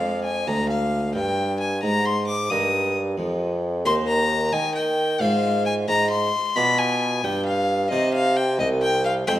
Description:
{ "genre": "classical, baroque-style sonata movement with continuo", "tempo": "89 BPM (dotted quarters)", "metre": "12/8", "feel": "rubato", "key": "Eb major, C minor from 3.9 s", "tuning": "A4 = 440 Hz", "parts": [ { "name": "rich violin", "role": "melody", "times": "0.0-9.4 s", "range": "Eb5 to Eb6", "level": "-23 LUFS", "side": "left 2 dB", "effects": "none" }, { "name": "harpsichord", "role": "accompaniment", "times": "0.0-9.4 s", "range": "C2 to D5", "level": "-27 LUFS", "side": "right 1 dB", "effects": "none" }, { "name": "warm bassoon", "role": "bass", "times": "0.0-9.4 s", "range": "C2 to Eb3", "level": "-24 LUFS", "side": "right 1 dB", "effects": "none" } ], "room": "wet recital hall reverb, RT60 1.6 s", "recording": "none", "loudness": "-20 LUFS", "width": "side -13 dB against mid", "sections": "0.0-9.4 A section", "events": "none", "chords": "0.0 Ddim/F; 1.2 Eb/G; 3.9 Cm/Eb; 5.2 Fm/Ab; 6.6 G7/B; 7.9 Cm", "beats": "0.47 | 1.15 1.83 2.51 3.18 | 3.86 4.53 5.20 5.88 | 6.56 7.24 7.92 8.59 | 9.27" }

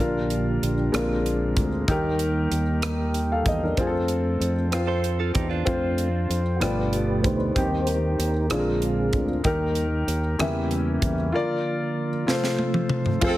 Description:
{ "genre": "slow gospel", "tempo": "63 BPM (dotted quarters)", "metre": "6/8", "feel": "straight", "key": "Bb major", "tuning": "A4 = 440 Hz", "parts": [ { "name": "warm concert grand piano", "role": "accompaniment", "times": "0.0-13.4 s", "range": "G2 to F5", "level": "-26 LUFS", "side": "left 2 dB", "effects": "none" }, { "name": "percussive tonewheel organ", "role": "sustained chords", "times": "0.0-13.4 s", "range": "B2 to C5", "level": "-28 LUFS", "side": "right 1 dB", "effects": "slow rotary speaker, chorus vibrato" }, { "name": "fingered electric bass", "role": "bass", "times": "0.0-13.4 s", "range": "G1 to F2", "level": "-26 LUFS", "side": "equal", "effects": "none" }, { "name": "crisp fusion drum kit", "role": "drums", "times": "0.3-13.4 s", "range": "crash cymbal, hi-hat, kick drum, rim click, snare drum, toms", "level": "-28 LUFS", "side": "equal", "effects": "none" }, { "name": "direct-recorded clean electric guitar", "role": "second line", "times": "4.9-6.4 s", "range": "D4 to C5", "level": "-30 LUFS", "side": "right 7 dB", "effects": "warbly pitch drift" }, { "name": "bright saxophone section", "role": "melody", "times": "13.2-13.4 s", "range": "C4 to A4", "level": "-24 LUFS", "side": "right 3 dB", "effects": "none" } ], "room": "moderate large studio reverb, RT60 1.2 s", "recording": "heavily compressed radio sound, multiband compression", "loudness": "-22 LUFS", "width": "side -15 dB against mid", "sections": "0.0-13.2 A section", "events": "tonewheel organ solo 0.0-13.2; drum fill 12.3-13.2", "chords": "0.0 Bb; 0.9 Bb7; 1.9 Eb; 3.8 F; 6.6 G7; 7.6 Cm/Eb; 8.5 Bb7; 9.5 Eb; 10.4 Edim7; 11.3 Bb; 12.3 F", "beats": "0.94 | 1.88 2.83 | 3.78 4.72 | 5.67 6.62 | 7.56 8.51 | 9.45 10.40 | 11.34 12.29 | 13.23" }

